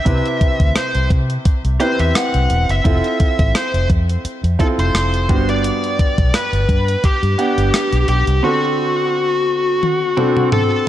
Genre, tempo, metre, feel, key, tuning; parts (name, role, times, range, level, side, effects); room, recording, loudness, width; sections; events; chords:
1980s-style pop; 86 BPM; 4/4; swing 55% on 16ths; G major; A4 = 436 Hz
bluesy overdriven lead guitar; melody; 0.0-10.9 s; F#4 to F#5; -19 LUFS; left 1 dB; distortion, ping-pong delay
clear concert grand piano; accompaniment; 0.0-10.9 s; G2 to F#5; -21 LUFS; right 1 dB
vintage muted fingered electric bass; bass; 0.1-8.4 s; E1 to C3; -17 LUFS; equal
clean 12-bit digital drum machine; drums; 0.1-10.7 s; hi-hat, kick drum, rim click, toms; -18 LUFS; equal
light reverb; dark, warm production; -14 LUFS; side -12 dB against mid
0.0-10.9 A section
drum fill 9.8-10.9
0.1 Cmaj7; 2.9 Fmaj7; 5.3 Gmaj7; 8.4 D7